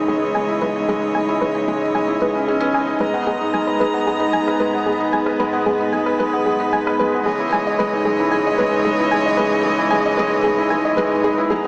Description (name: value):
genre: piano and strings electronica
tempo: 113 BPM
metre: 4/4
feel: straight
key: unclear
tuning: A4 = 441 Hz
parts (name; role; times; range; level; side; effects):
- dark string quartet; sustained chords; 0.0-11.7 s; G#2 to A#5; -26 LUFS; equal; none
- felt-muted upright piano; riff; 0.0-11.7 s; G#3 to D#5; -22 LUFS; equal; tape echo
- soft round pluck; arpeggios; 0.1-11.5 s; G#4 to G#5; -25 LUFS; equal; chorus, tape echo
- felt-muted upright piano; melody; 11.5-11.7 s; G#4; -26 LUFS; equal; none
room: wet huge ambient reverb, RT60 7.0 s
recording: small speaker sound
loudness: -19 LUFS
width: mono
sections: 0.0-11.5 A section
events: build-up 0.0-11.5; filter sweep on synth arpeggio sound 0.0-11.5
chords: 0.0 C#madd9; 3.0 G#madd9; 7.3 C#madd9